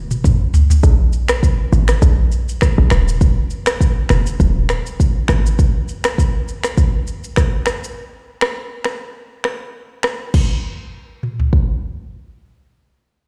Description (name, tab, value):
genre	afrobeats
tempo	101 BPM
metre	4/4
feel	swing 55% on 16ths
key	unclear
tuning	A4 = 441 Hz
part	short 808-style bass	bass	0.0-5.5 s	Eb1 to Bb1	-17 LUFS	equal	none
part	afro-pop drum kit	drums	0.1-11.7 s	crash cymbal, finger snaps, kick drum, rim click, shaker, toms	-18 LUFS	equal	vintage 12-bit sampler grit
room	little or no reverb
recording	played on a big sound system in a bare room, large studio reverb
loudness	-17 LUFS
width	mono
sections	0.8-10.3 A section; 10.3-12.7 B section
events	drum fill 0.0-0.8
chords	none